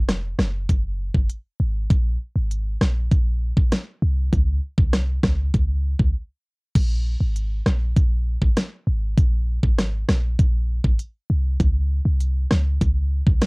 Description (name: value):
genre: dancehall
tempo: 99 BPM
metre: 4/4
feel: straight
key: unclear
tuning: A4 = 440 Hz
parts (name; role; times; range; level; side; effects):
- clean 808-style bass; bass; 0.0-13.4 s; F1 to Db2; -21 LUFS; equal; none
- pop drum kit; drums; 0.1-13.5 s; crash cymbal, hi-hat, kick drum, rim click, snare drum; -20 LUFS; equal; cassette tape
room: little or no reverb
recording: home recording on cassette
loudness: -19 LUFS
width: side -37 dB against mid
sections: 0.0-6.8 A section; 6.8-13.5 B section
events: break 6.1-6.8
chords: none